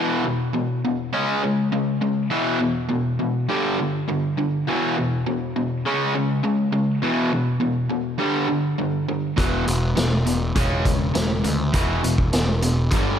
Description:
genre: classic rock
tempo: 102 BPM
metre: 4/4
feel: straight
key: unclear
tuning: A4 = 439 Hz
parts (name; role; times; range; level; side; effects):
- raw garage guitar; riff; 0.0-13.2 s; E2 to C#4; -21 LUFS; equal; overdrive
- fuzz picked electric bass; bass; 9.4-13.2 s; E1 to D2; -23 LUFS; equal; overdrive
- vintage drum kit; drums; 9.4-13.1 s; hi-hat, kick drum, snare drum; -23 LUFS; equal; none
room: light reverb, small room ambience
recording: none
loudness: -20 LUFS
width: side -8 dB against mid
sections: 0.0-13.2 A section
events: none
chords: 0.0 E5; 1.1 C#5; 2.3 E5; 3.5 G5; 4.7 E5; 5.8 C#5; 7.0 E5; 8.2 G5; 9.4 E5; 10.6 C#m/E; 11.7 E5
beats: 0.56 1.15 1.73 | 2.32 2.91 3.49 4.08 | 4.67 5.25 5.84 6.43 | 7.02 7.61 8.20 8.79 | 9.38 9.97 10.56 11.15 | 11.74 12.33 12.92

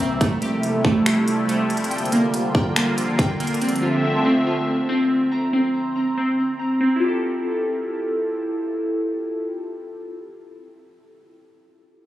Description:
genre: hip hop, atmospheric cloud-rap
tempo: 141 BPM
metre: 4/4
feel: half-time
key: F major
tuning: A4 = 441 Hz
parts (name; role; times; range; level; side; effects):
- sweeping resonant pad; sustained chords; 0.0-5.3 s; C3 to E5; -23 LUFS; equal; chorus, sidechain pumping, low-pass filter
- glassy digital keys; arpeggios; 0.0-10.2 s; A3 to Bb5; -21 LUFS; equal; chorus, phaser, low-pass filter, digital delay
- clean 808-style bass; bass; 0.0-1.9 s; F1 to C2; -36 LUFS; equal; none
- organic electronic drum kit; drums; 0.0-3.8 s; finger snaps, hi-hat, kick drum; -23 LUFS; equal; none
room: light reverb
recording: recorded on a phone in the room, studio reverb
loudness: -19 LUFS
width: side -14 dB against mid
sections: 0.2-7.0 A section; 7.0-10.4 B section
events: none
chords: 0.2 Fmaj9; 1.9 Bb6; 3.6 Dm9; 5.3 Bbsus2/C; 7.0 Fmaj9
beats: | 0.21 0.63 1.06 1.49 | 1.91 2.34 2.76 3.19 | 3.61 4.04 4.46 4.89 | 5.32 5.74 6.17 6.59 | 7.02 7.44 7.87 8.29 | 8.72 9.14 9.57 10.00

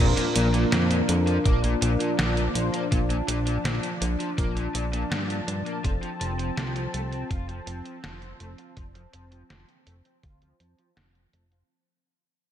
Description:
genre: synthwave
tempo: 82 BPM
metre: 4/4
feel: straight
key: unclear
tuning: A4 = 441 Hz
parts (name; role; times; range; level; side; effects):
- warm analog pad; sustained chords; 0.0-11.7 s; F3 to A5; -30 LUFS; equal; chorus, sidechain pumping
- overdriven electric guitar; riff; 0.0-11.6 s; Bb2 to F4; -34 LUFS; left 3 dB; analog chorus, low-pass filter, digital delay
- mellow synth brass; stabs; 0.0-9.0 s; Bb2 to D5; -32 LUFS; left 1 dB; chorus, ping-pong delay
- fat analog bass; bass; 0.0-11.6 s; F1 to G2; -27 LUFS; equal; none
- detuned 8-bit digital drum machine; drums; 0.2-11.7 s; hi-hat, snare drum; -30 LUFS; right 2 dB; low-pass filter on hats, low-pass filter on perc, low-pass filter on snare, low-pass filter on toms, low-pass filter on cymbals, gated reverb
- electronic kick drum; drums; 1.5-10.4 s; none; -25 LUFS; equal; none
room: light reverb, digital ambience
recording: none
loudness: -23 LUFS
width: side -10 dB against mid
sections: 0.0-11.7 A section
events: fade-out 0.0-11.7; filter sweep on analog synth bass 0.0-11.7; filter sweep on overdriven electric guitar 0.0-11.7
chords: 0.0 Bb; 5.8 F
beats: 0.72 1.45 2.19 | 2.92 3.65 4.38 5.11 | 5.84 6.58 7.31 8.04 | 8.77 9.50 10.23 10.96

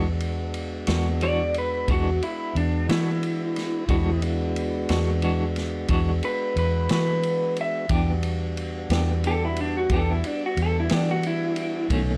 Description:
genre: slow blues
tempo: 60 BPM (dotted quarters)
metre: 12/8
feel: straight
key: unclear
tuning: A4 = 443 Hz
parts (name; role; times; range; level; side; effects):
- clean electric guitar; accompaniment; 0.0-12.1 s; B2 to G4; -30 LUFS; equal; tremolo
- tonewheel organ; sustained chords; 0.0-12.2 s; G3 to D#5; -35 LUFS; equal; slow rotary speaker
- vintage muted fingered electric bass; bass; 0.0-12.2 s; B1 to E3; -28 LUFS; equal; none
- vintage drum kit; drums; 0.2-12.1 s; kick drum, ride cymbal, snare drum; -32 LUFS; equal; none
- electric guitar through a small old amp; melody; 1.2-11.9 s; D4 to E5; -29 LUFS; equal; lush chorus
room: little or no reverb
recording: dry, gritty hardware recording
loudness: -24 LUFS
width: mono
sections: 0.0-12.2 A section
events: clean electric guitar solo 0.0-12.2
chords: 0.0 E9; 7.9 Em7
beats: 0.89 1.89 2.89 | 3.89 4.90 5.90 6.90 | 7.90 8.90 9.91 10.91 | 11.91

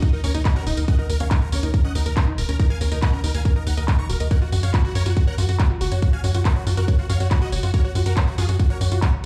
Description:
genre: uplifting trance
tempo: 140 BPM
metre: 4/4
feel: straight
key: Eb minor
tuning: A4 = 441 Hz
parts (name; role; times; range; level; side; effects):
- big supersaw lead; melody; 0.0-9.1 s; Eb4 to Db6; -34 LUFS; equal; phaser, sidechain pumping, tape echo
- analog pluck; arpeggios; 0.0-9.2 s; Eb3 to Eb5; -34 LUFS; equal; chorus, sidechain pumping, tape echo
- electronic kick drum; drums; 0.0-9.1 s; none; -20 LUFS; equal; none
- house drum kit; drums; 0.0-9.1 s; handclaps, hi-hat, tambourine; -33 LUFS; equal; none
- tight sequencer bass; bass; 0.2-9.0 s; Eb1 to Gb2; -23 LUFS; equal; sidechain pumping
room: little or no reverb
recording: played on a big sound system in a bare room, large studio reverb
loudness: -21 LUFS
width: mono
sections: 0.0-9.3 A section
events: none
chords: 0.0 Eb5; 4.3 Gb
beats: 0.02 0.45 | 0.88 1.31 1.74 2.17 | 2.60 3.02 3.45 3.88 | 4.31 4.74 5.17 5.59 | 6.02 6.45 6.88 7.31 | 7.74 8.17 8.60 9.02

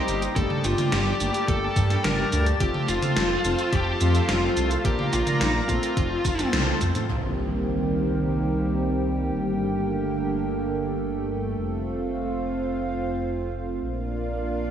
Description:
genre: synthwave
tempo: 107 BPM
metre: 4/4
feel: straight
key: C dorian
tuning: A4 = 440 Hz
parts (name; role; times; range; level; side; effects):
- smooth overdriven lead guitar; melody; 0.0-6.5 s; Eb4 to Bb4; -28 LUFS; left 1 dB; tape echo
- lush unison pad; sustained chords; 0.0-14.7 s; D3 to Bb5; -27 LUFS; right 1 dB; chorus, sidechain pumping
- mellow synth brass; stabs; 0.0-7.1 s; G2 to Bb4; -30 LUFS; left 1 dB; chorus, tape echo
- dark detuned saw bass; bass; 0.1-14.7 s; F1 to G2; -28 LUFS; equal; sidechain pumping
- gated 80s digital drum machine; drums; 0.1-7.1 s; hi-hat, shaker, snare drum, toms; -28 LUFS; equal; gated reverb, gated reverb snare
- electronic kick drum; drums; 0.4-6.9 s; none; -26 LUFS; equal; none
- impact; sound effects; 7.1-9.3 s; none; -34 LUFS; equal; none
room: moderate plate reverb, RT60 1.7 s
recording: dreamy mix soaked in reverb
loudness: -22 LUFS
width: side -9 dB against mid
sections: 0.0-7.1 A section; 7.1-14.7 B section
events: drum fill 6.5-7.1; band accent 6.5; impact 7.1-9.3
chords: 0.4 Gmadd9; 2.6 F; 4.8 Bb; 6.0 F; 7.1 Cm7; 9.3 Gmadd9; 11.6 F; 13.8 Bb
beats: | 0.36 0.92 1.48 2.04 | 2.60 3.17 3.73 4.29 | 4.85 5.41 5.97 6.53 | 7.09 7.65 8.21 8.77 | 9.33 9.89 10.46 11.02 | 11.58 12.14 12.70 13.26 | 13.82 14.38

